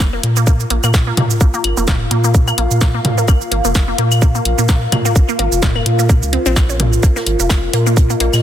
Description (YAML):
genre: minimal techno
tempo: 128 BPM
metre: 4/4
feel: swing 56% on 16ths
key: unclear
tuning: A4 = 439 Hz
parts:
  - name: resonant blip pluck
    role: riff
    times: 0.0-8.2 s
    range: Bb3 to Db4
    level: -22 LUFS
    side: equal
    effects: phaser, sidechain pumping, digital delay
  - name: rubbery square bass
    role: bass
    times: 0.0-8.4 s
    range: F1 to Bb2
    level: -17 LUFS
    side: equal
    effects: sidechain pumping
  - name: electronic kick drum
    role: drums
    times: 0.0-8.1 s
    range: none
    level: -12 LUFS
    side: equal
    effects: none
  - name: punchy analog drum machine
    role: drums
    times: 0.0-8.4 s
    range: hi-hat, shaker, snare drum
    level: -21 LUFS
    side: right 1 dB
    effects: soft clipping on snare
  - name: electronic claves and toms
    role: percussion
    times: 0.0-8.4 s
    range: none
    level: -20 LUFS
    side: equal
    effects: none
  - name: warbly tape-like pad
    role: texture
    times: 0.2-8.4 s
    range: F4 to F5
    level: -21 LUFS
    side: left 1 dB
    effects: chorus, built-in reverb, phaser, sidechain pumping
  - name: jazz brush drum kit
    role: drums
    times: 7.0-8.4 s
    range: hi-hat, snare drum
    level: -29 LUFS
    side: right 3 dB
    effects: high-pass filter on hats, high-pass filter on snare, high-pass filter on room
room: light reverb, digital ambience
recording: dense, heavily limited modern master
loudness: -12 LUFS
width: side -11 dB against mid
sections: 0.0-8.4 A section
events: none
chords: 0.0 Bb5